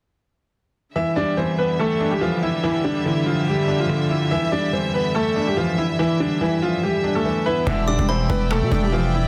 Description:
hip hop, trap; 143 BPM; 4/4; half-time; E phrygian; A4 = 441 Hz
warm baby grand piano; melody; 1.0-9.1 s; D3 to E5; -24 LUFS; equal
felt-muted upright piano; accompaniment; 1.0-9.3 s; D3 to E4; -26 LUFS; equal
rich studio string section; sustained chords; 1.0-9.3 s; D3 to G5; -31 LUFS; equal
mellow brass ensemble; stabs; 7.7-8.1 s; G2 to D3; -36 LUFS; equal; delay
growling 808-style bass; bass; 7.7-9.3 s; E1 to B2; -23 LUFS; equal
cajon; drums; 7.7-9.2 s; -30 LUFS; equal
delicate synth tine bell; second line; 7.9-8.9 s; B5 to D6; -34 LUFS; equal; chorus, phaser, delay
light reverb, studio reverb; dense, heavily limited modern master; -21 LUFS; mono
1.0-7.7 A section; 7.7-9.3 B section
1.0 Em7

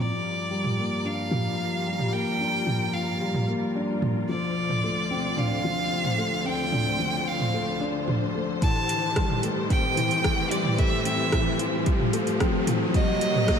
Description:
piano and strings electronica; 111 BPM; 4/4; straight; G minor; A4 = 440 Hz
clear violin; melody; 0.0-13.6 s; D5 to A5; -28 LUFS; right 1 dB
rich symphonic string section; sustained chords; 0.0-13.6 s; D2 to C5; -34 LUFS; equal; sidechain pumping, low-pass filter
felt-muted upright piano; riff; 0.0-13.6 s; E3 to D4; -28 LUFS; left 3 dB; tape echo
riser; sound effects; 3.2-13.6 s; -32 LUFS; equal
deep house drum kit; drums; 0.6-13.6 s; hi-hat, rim click, toms; -29 LUFS; right 2 dB; overdrive, small room ambience
electronic kick drum; drums; 8.6-13.6 s; -25 LUFS; right 1 dB; overdrive, small room ambience
moderate lush hall reverb, RT60 2.1 s; -23 LUFS; side -7 dB against mid
0.0-13.6 A section
build-up 0.0-13.6; filter sweep on string section 0.0-13.6; riser 3.2-13.6
0.0 Gm7; 4.3 Dm7; 8.6 Am7; 12.9 Cm7

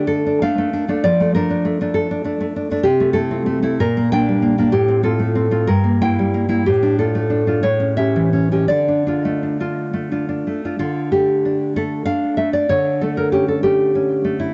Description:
romantic piece for solo classical guitar; 53-70 BPM (dotted quarters); 6/8; rubato; D minor; A4 = 441 Hz
nylon-string guitar; solo; 0.0-14.5 s; G2 to G5; -18 LUFS; equal
moderate spring reverb, RT60 1.5 s; nothing above 8.0 kHz; -18 LUFS; mono
0.0-10.8 A section; 10.8-14.5 A section
0.0 Dm; 1.1 Dm/F; 2.9 Am/C; 3.8 Gm/Bb; 4.7 F/A; 5.7 Edim/G; 6.7 Dm/A; 7.6 A7; 8.7 Dm; 10.8 D5; 12.7 A7/D

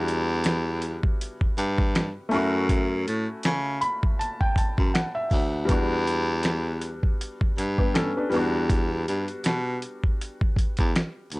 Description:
lo-fi hip hop; 80 BPM; 4/4; swing 57% on 16ths; E dorian; A4 = 441 Hz
felt-muted upright piano; accompaniment; 0.0-11.4 s; G3 to B5; -29 LUFS; left 1 dB; cassette tape, low-pass filter
clear baritone saxophone; bass; 0.0-11.4 s; D2 to C#3; -26 LUFS; equal
dusty soul sampler-style drum kit; drums; 0.1-11.4 s; finger snaps, hi-hat, kick drum, snare drum; -24 LUFS; equal; overdrive
little or no reverb; dry, gritty hardware recording; -23 LUFS; side -24 dB against mid
0.0-11.4 A section
0.0 Em7; 2.3 F#m7

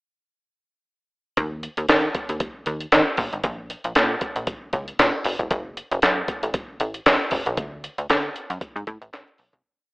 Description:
early-eighties boogie funk; 116 BPM; 4/4; swing 56% on 16ths; A4 = 440 Hz
plucky analog bass; bass; 1.4-9.6 s; Fb1 to Eb3; -26 LUFS; equal
breakbeat sampler-style drum kit; drums; 1.4-9.6 s; handclaps, hi-hat, kick drum, snare drum; -21 LUFS; equal
wet plate reverb, RT60 1.3 s, digital ambience; dreamy mix soaked in reverb, telephone sound; -21 LUFS; side -24 dB against mid
1.4-9.6 verse
fade-out 7.6-9.6

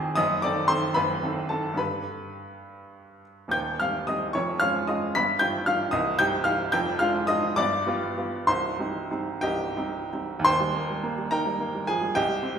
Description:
classical, romantic character piece for solo piano; 55-77 BPM (dotted quarters); 6/8; rubato; C minor; A4 = 440 Hz
bright upright piano; solo; 0.0-12.6 s; C1 to B6; -23 LUFS; equal
wet recital hall reverb, RT60 1.4 s; recorded in a church or concert hall; -23 LUFS; side -8 dB against mid
0.0-10.5 A section; 10.5-12.6 B section
0.2 F#dim7; 1.8 G; 3.5 Cm/Eb; 4.3 Db/F; 5.2 G7; 5.9 Cm; 6.7 Ddim/F; 7.6 G7; 8.5 Cm; 10.5 Eb

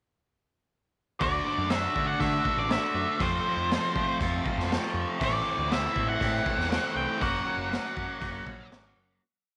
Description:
psychedelic rock; 120 BPM; 4/4; straight; D mixolydian; A4 = 440 Hz
octave-fuzz lead guitar; melody; 1.2-8.7 s; C5 to G5; -32 LUFS; equal; distortion, tape echo
cranked stack guitar; riff; 1.2-9.2 s; A2 to F#4; -33 LUFS; equal; overdrive, flanger
growling picked electric bass; bass; 1.2-9.2 s; F#1 to F3; -36 LUFS; equal; overdrive
raw garage drum kit; drums; 1.2-8.8 s; hi-hat, kick drum, snare drum; -35 LUFS; equal
light reverb, studio reverb; -28 LUFS; mono
1.2-9.2 verse
fade-out 7.2-9.2
1.2 D; 3.2 F; 5.2 Am; 7.2 F#

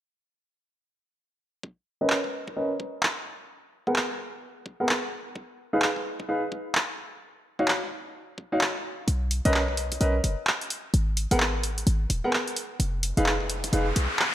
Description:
UK garage, two-step garage; 129 BPM; 4/4; swing 62% on 16ths; A4 = 445 Hz
electronic kick drum; drums; 1.6-14.1 s; -41 LUFS; equal; high-pass filter on kick
warm baby grand piano; stabs; 2.0-13.8 s; Cb4 to Gb5; -28 LUFS; equal; low-pass filter, digital delay
punchy analog drum machine; drums; 2.1-14.3 s; handclaps, hi-hat; -27 LUFS; equal
short 808-style bass; bass; 9.1-14.1 s; Eb1 to B1; -25 LUFS; equal
riser; sound effects; 13.4-14.3 s; -31 LUFS; left 1 dB
moderate lush hall reverb, RT60 1.7 s, digital ambience; bright 1980s-style digital production; -24 LUFS; side -12 dB against mid
1.6-14.3 A section
filter sweep on grand piano 1.6-14.3; riser 13.4-14.3
1.6 Bmaj9; 3.3 Abm9; 5.4 Fm7b5; 7.0 Ebm9; 9.1 Bmaj9; 10.7 N.C.; 12.8 Fm7b5

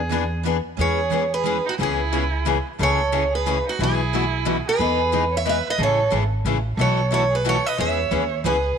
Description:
acoustic string swing (jazz manouche); 180 BPM; 3/4; swing 59% on 8ths; E major; A4 = 442 Hz
picked steel-string acoustic guitar; melody; 0.0-8.8 s; F#4 to E5; -23 LUFS; right 2 dB
upright bass; bass; 0.0-8.7 s; G#1 to E2; -25 LUFS; equal
picked steel-string acoustic guitar; accompaniment; 0.1-8.6 s; B2 to G#4; -25 LUFS; left 12 dB
picked steel-string acoustic guitar; accompaniment; 0.1-8.6 s; B2 to B4; -31 LUFS; right 12 dB
dark violin; second line; 0.8-8.8 s; D#4 to C#5; -27 LUFS; right 10 dB
light reverb, small room ambience; 1960s-style stereo with parts hard left and right; -19 LUFS; side -7 dB against mid
0.8-8.8 A section
0.0 E7; 0.8 E6; 1.8 C#m7; 2.8 Amaj7/C#; 3.8 B7sus4; 4.8 Emaj7; 5.8 Amaj7; 6.8 B7sus4; 7.8 E6

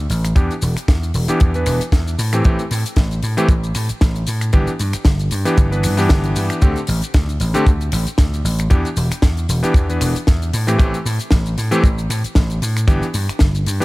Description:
nu-disco, nu disco; 115 BPM; 4/4; swing 55% on 16ths; G major; A4 = 440 Hz
vintage slap bass; bass; 0.0-13.8 s; E1 to A2; -19 LUFS; equal; tube saturation
tight funk drum kit; drums; 0.1-13.8 s; finger snaps, hi-hat, shaker, snare drum; -25 LUFS; left 1 dB; studio reverb
warm electric grand piano; accompaniment; 0.4-13.8 s; D3 to B4; -21 LUFS; equal; sidechain pumping, low-pass filter, tape echo
kick drum; drums; 0.4-13.5 s; -14 LUFS; equal; studio reverb
little or no reverb; -15 LUFS; side -20 dB against mid
0.0-13.8 A section
0.4 Em7; 2.2 Am7; 4.5 G6; 6.6 D7sus4; 8.7 Em7; 10.5 Am7; 12.9 G6

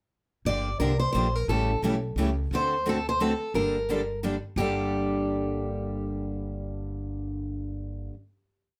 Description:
acoustic string swing (jazz manouche); 175 BPM; 3/4; swing 62% on 8ths; G minor; A4 = 440 Hz
picked steel-string acoustic guitar; melody; 0.5-8.1 s; G4 to D5; -32 LUFS; equal
picked steel-string acoustic guitar; accompaniment; 0.5-8.1 s; G2 to A4; -33 LUFS; equal
picked steel-string acoustic guitar; accompaniment; 0.5-8.1 s; G2 to A4; -38 LUFS; equal
upright bass; bass; 0.5-8.1 s; G1 to D2; -34 LUFS; equal
moderate studio ambience, RT60 0.5 s; -28 LUFS; mono
0.5-4.6 A section; 4.6-6.6 final chord
0.5 Gm7; 1.5 A7; 2.5 D7; 3.5 Gmadd9

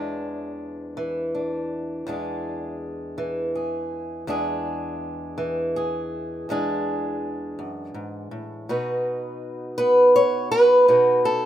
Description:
acoustic country blues, solo or duo; 54 BPM (dotted quarters); 12/8; straight; E mixolydian; A4 = 440 Hz
fingerpicked old ladder-braced acoustic guitar; solo; 0.0-11.5 s; E2 to C#5; -21 LUFS; equal
light reverb; rough home demo mix; -20 LUFS; side -12 dB against mid
0.0-11.5 A section
0.0 E7; 8.7 B

